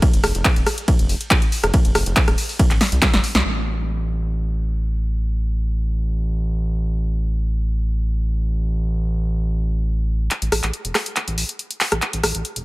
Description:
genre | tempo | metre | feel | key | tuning
driving peak-time techno | 140 BPM | 4/4 | straight | unclear | A4 = 438 Hz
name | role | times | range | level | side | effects
electronic kick drum | drums | 0.0-3.1 s | none | -17 LUFS | equal | none
punchy analog drum machine | drums | 0.0-3.5, 10.3-12.6 s | crash cymbal, handclaps, hi-hat, ride cymbal, rim click, snare drum | -20 LUFS | equal | overdrive, sidechain pumping on hats, low-pass filter on hats, low-pass filter on snare, sidechain pumping on cymbals, low-pass filter on cymbals
gritty driven synth bass | bass | 0.1-12.6 s | D#1 to C2 | -21 LUFS | equal | tube saturation, sidechain pumping
room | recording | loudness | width
digital ambience | none | -18 LUFS | side -20 dB against mid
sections
0.0-3.5 A section; 3.5-10.3 B section; 10.3-12.6 C section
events
drop 0.0-3.5; drum fill 2.8-3.5, 10.3-12.6; band accent 3.3; filter sweep on drum 3.5-10.3; build-up 10.3-12.6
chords
none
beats
| 0.02 0.45 0.88 1.31 | 1.74 2.17 2.59 3.02 | 3.45 3.88 4.31 4.74 | 5.17 5.59 6.02 6.45 | 6.88 7.31 7.74 8.16 | 8.59 9.02 9.45 9.88 | 10.31 10.74 11.16 11.59 | 12.02 12.45

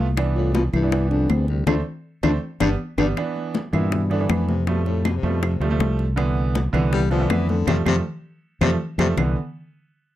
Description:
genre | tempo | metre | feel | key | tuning
Afro-Cuban jazz | 160 BPM | 4/4 | straight | C major | A4 = 440 Hz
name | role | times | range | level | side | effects
clear baby grand piano | accompaniment | 0.0-9.4 s | D3 to E4 | -26 LUFS | right 5 dB | none
fingered electric bass | bass | 0.0-9.3 s | G1 to G2 | -22 LUFS | equal | none
bongos | percussion | 0.2-9.3 s | none | -27 LUFS | left 7 dB | none
claves | percussion | 0.2-9.3 s | none | -32 LUFS | right 12 dB | none
congas | percussion | 0.2-9.3 s | none | -27 LUFS | left 2 dB | none
dark French horn | melody | 0.4-3.1 s | G3 to F4 | -24 LUFS | equal | none
breathy baritone saxophone | second line | 0.4-9.1 s | C2 to G3 | -27 LUFS | left 7 dB | none
room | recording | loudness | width
light reverb | dry, close 1970s-style studio recording | -19 LUFS | side -14 dB against mid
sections
0.0-3.2 A section; 3.2-9.2 B section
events
band accent 1.7-3.2, 7.7-9.2; drum fill 2.0-3.2, 8.1-9.2; baritone saxophone solo 3.2-9.2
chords
0.2 Cmaj7; 1.7 Dm7; 2.4 G; 3.2 Cmaj9 (rootless); 4.7 Fadd9; 6.2 Cmaj7; 7.7 Fadd9; 9.2 Cmaj7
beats
| 0.17 0.55 0.92 1.30 | 1.67 2.05 2.42 2.80 | 3.17 3.55 3.93 4.30 | 4.68 5.05 5.43 5.80 | 6.18 6.55 6.93 7.30 | 7.68 8.05 8.43 8.80 | 9.18

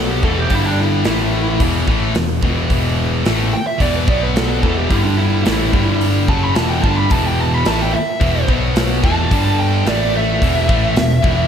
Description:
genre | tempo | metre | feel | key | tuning
hard rock | 109 BPM | 4/4 | straight | E minor | A4 = 440 Hz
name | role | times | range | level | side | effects
bluesy overdriven lead guitar | melody | 0.0-11.5 s | D4 to B5 | -21 LUFS | right 2 dB | distortion
heavy high-gain guitar | riff | 0.0-11.5 s | E2 to B3 | -20 LUFS | left 11 dB | distortion
scooped high-gain guitar | riff | 0.0-11.5 s | E2 to B3 | -21 LUFS | right 10 dB | distortion
overdriven picked electric bass | bass | 0.0-11.5 s | E1 to B1 | -20 LUFS | equal | none
big rock drum kit | drums | 0.2-11.4 s | hi-hat, kick drum, snare drum | -20 LUFS | equal | gated reverb
room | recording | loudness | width
moderate lush hall reverb, RT60 2.2 s | bright 1980s-style digital production | -14 LUFS | side -8 dB against mid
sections
0.0-11.5 A section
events
lead electric guitar solo 0.0-11.5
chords
0.2 Em; 0.5 G5; 1.1 A5; 1.6 E5; 4.1 B5; 4.6 Em; 4.9 G5; 5.5 A5; 5.7 G5; 6.3 Em; 8.5 B5; 9.0 E5; 9.3 G5; 9.9 A5; 10.4 E5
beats
| 0.51 1.06 1.61 2.16 | 2.71 3.26 3.81 4.36 | 4.91 5.46 6.01 6.56 | 7.11 7.66 8.21 8.76 | 9.31 9.86 10.41 10.96

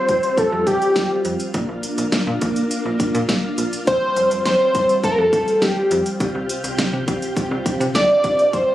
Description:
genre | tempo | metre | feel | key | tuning
synth-pop | 103 BPM | 4/4 | straight | F major | A4 = 440 Hz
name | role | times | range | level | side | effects
fat analog lead | melody | 0.0-8.7 s | G4 to D5 | -16 LUFS | equal | slapback echo
ensemble organ-string | sustained chords | 0.0-8.7 s | C3 to G4 | -24 LUFS | equal | ensemble chorus
slap-like FM bass | bass | 0.1-8.7 s | F1 to C3 | -26 LUFS | equal | none
pop drum kit | drums | 0.1-8.7 s | hi-hat, kick drum, snare drum | -24 LUFS | equal | none
room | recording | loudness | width
light reverb, digital ambience | recorded on a phone in the room, studio ambience | -17 LUFS | side -13 dB against mid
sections
0.0-8.7 A section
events
none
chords
0.0 Fsus2; 1.5 Bb; 3.9 Fsus2; 6.2 Csus4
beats
0.38 0.96 | 1.54 2.13 2.71 3.29 | 3.87 4.46 5.04 5.62 | 6.20 6.79 7.37 7.95 | 8.53

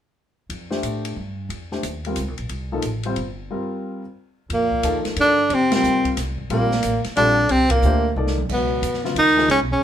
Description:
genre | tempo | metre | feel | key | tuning
modal jazz | 180 BPM | 3/4 | swing 64% on 8ths | F mixolydian | A4 = 439 Hz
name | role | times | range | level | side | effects
upright bass | bass | 0.5-9.8 s | G1 to A2 | -26 LUFS | equal | none
open jazz drum kit | drums | 0.5-9.6 s | crash cymbal, hi-hat, kick drum, ride cymbal, snare drum, toms | -30 LUFS | equal | none
warm concert grand piano | accompaniment | 0.7-9.5 s | Db3 to D5 | -26 LUFS | left 2 dB | none
warm tenor saxophone | melody | 4.5-9.8 s | Bb3 to Eb4 | -18 LUFS | equal | none
breathy trombone | second line | 4.5-9.8 s | Bb2 to Eb3 | -27 LUFS | right 3 dB | none
room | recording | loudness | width
moderate studio reverb, RT60 0.7 s | band playing live in one room | -18 LUFS | side -10 dB against mid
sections
0.5-4.5 A section; 4.5-9.8 B section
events
break 3.5-4.5; band accent 5.7, 7.7; drum fill 8.2-8.5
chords
0.5 Fsus4; 4.5 F9sus4; 8.5 Db7sus2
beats
| 0.50 0.83 1.17 | 1.50 1.84 2.17 | 2.50 2.84 3.17 | 3.51 3.84 4.17 | 4.51 4.84 5.17 | 5.51 5.84 6.17 | 6.50 6.84 7.17 | 7.50 7.83 8.17 | 8.50 8.83 9.16 | 9.50 9.83

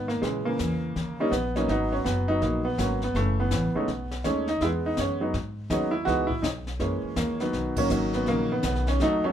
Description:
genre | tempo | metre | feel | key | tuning
jazz piano trio | 164 BPM | 4/4 | swing 64% on 8ths | B major | A4 = 442 Hz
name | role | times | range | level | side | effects
clear upright piano | melody | 0.0-9.3 s | C#3 to F#4 | -25 LUFS | right 1 dB | none
upright bass | bass | 0.0-9.3 s | F#1 to A#2 | -30 LUFS | left 1 dB | none
jazz brush drum kit | drums | 0.1-9.3 s | brushed snare drum, hi-hat, kick drum, ride cymbal, snare drum | -35 LUFS | left 3 dB | none
room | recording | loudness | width
light reverb | minimal, uncompressed stereo recording | -24 LUFS | side -9 dB against mid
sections
0.0-9.3 A section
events
band accent 7.7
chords
0.2 A#dim; 1.0 D#7(no3); 1.7 G#m9; 3.1 F#m7; 3.9 B13; 4.6 Emaj9; 6.1 C#m9; 6.8 F#13; 7.5 Bmaj9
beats
| 0.23 0.59 0.95 1.32 | 1.69 2.05 2.42 2.78 | 3.15 3.51 3.88 4.24 | 4.61 4.97 5.34 5.70 | 6.07 6.43 6.80 7.17 | 7.53 7.90 8.26 8.63 | 8.99

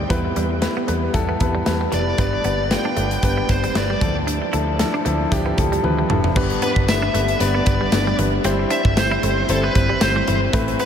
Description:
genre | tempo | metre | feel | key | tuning
1980s-style pop | 115 BPM | 4/4 | swing 55% on 16ths | G mixolydian | A4 = 441 Hz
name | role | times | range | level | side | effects
warm baby grand piano | accompaniment | 0.0-10.9 s | F3 to D5 | -22 LUFS | left 2 dB | none
vintage muted picked electric bass | bass | 0.0-10.7 s | F1 to E2 | -24 LUFS | equal | none
direct-recorded clean electric guitar | riff | 0.1-10.9 s | E3 to E4 | -28 LUFS | right 3 dB | analog chorus, ping-pong delay
modern studio drum kit | drums | 0.1-10.9 s | crash cymbal, hi-hat, kick drum, snare drum, tambourine, toms | -22 LUFS | equal | none
high-gain lead guitar | melody | 1.9-10.9 s | A4 to G5 | -25 LUFS | left 1 dB | distortion, ping-pong delay
room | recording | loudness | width
wet huge ambient reverb, RT60 7.4 s | dreamy mix soaked in reverb | -17 LUFS | side -8 dB against mid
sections
0.0-6.4 A section; 6.4-10.9 B section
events
drum fill 5.8-6.4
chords
0.1 Em; 2.2 G; 4.0 Dmadd9; 6.4 G; 8.4 C/G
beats
| 0.10 0.62 1.15 1.67 | 2.19 2.71 3.23 3.75 | 4.28 4.80 5.32 5.84 | 6.36 6.88 7.41 7.93 | 8.45 8.97 9.49 10.01 | 10.54

